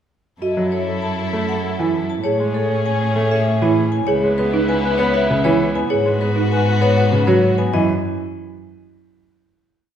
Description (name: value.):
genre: classical, minimalist pattern music.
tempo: 197 BPM.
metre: 6/4.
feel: straight.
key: F# dorian.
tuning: A4 = 441 Hz.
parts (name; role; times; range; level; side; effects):
vibraphone with hard mallets; melody; 0.4-7.9 s; A4 to A5; -24 LUFS; left 5 dB; none.
warm clarinet; second line; 0.4-7.5 s; A4 to C#5; -26 LUFS; equal; none.
rich studio violin section; sustained chords; 0.4-7.5 s; B3 to A4; -26 LUFS; left 4 dB; none.
folk marimba with soft mallets; arpeggios; 0.4-7.9 s; D#4 to B4; -22 LUFS; right 4 dB; none.
rich cello; bass; 0.4-7.9 s; C#2 to A2; -21 LUFS; right 1 dB; none.
clear baby grand piano; accompaniment; 0.6-7.9 s; C#3 to B3; -23 LUFS; equal; none.
room: wet scoring stage reverb, RT60 1.4 s.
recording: heard from further back in the room.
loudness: -16 LUFS.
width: side -9 dB against mid.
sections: 0.4-7.7 A section; 7.7-9.6 final chord.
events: none.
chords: 0.4 F#m7; 2.2 Amaj7; 4.1 C#m7; 5.9 G#m7; 7.7 N.C..